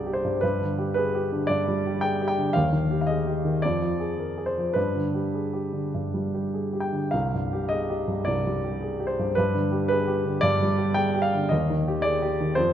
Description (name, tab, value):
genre	classical, romantic character piece for solo piano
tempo	98-115 BPM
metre	4/4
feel	rubato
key	unclear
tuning	A4 = 440 Hz
part	warm baby grand piano	solo	0.0-12.7 s	C2 to G5	-23 LUFS	equal	none
room	wet concert hall reverb, RT60 1.9 s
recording	none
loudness	-23 LUFS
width	side -10 dB against mid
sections	0.0-12.7 A section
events	none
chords	0.4 G; 2.6 Ebadd9; 3.6 Ddim/F; 4.8 G; 7.1 Cm; 9.4 G; 11.5 Ebmaj7